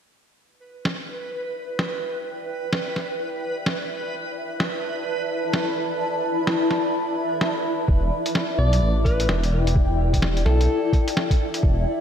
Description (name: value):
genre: future garage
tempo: 128 BPM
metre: 4/4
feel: swing 61% on 16ths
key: E minor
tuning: A4 = 440 Hz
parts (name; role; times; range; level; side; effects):
- granular cloud pad; sustained chords; 2.0-12.0 s; E4 to B5; -26 LUFS; left 2 dB; built-in reverb, lush chorus, sidechain pumping
- backwards swelling texture; texture; 0.8-7.9 s; B4; -30 LUFS; right 4 dB; built-in reverb
- lo-fi sampler-style drum kit; drums; 0.9-11.6 s; hi-hat, snare drum; -27 LUFS; equal; none
- dark detuned saw bass; bass; 7.9-11.9 s; E1 to B1; -20 LUFS; equal; sidechain pumping
- electronic kick drum; drums; 7.9-11.7 s; none; -20 LUFS; equal; none
- breathy alto saxophone; melody; 8.6-11.1 s; A4 to D5; -28 LUFS; left 1 dB; diffuse ambient delay
room: moderate lush hall reverb, RT60 2.0 s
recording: dreamy mix soaked in reverb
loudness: -21 LUFS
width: side -9 dB against mid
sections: 0.4-7.9 A section; 7.9-12.0 B section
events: fade-in on ambient pad 0.4-7.9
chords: 0.4 Em7; 4.1 E7sus4; 7.9 Em7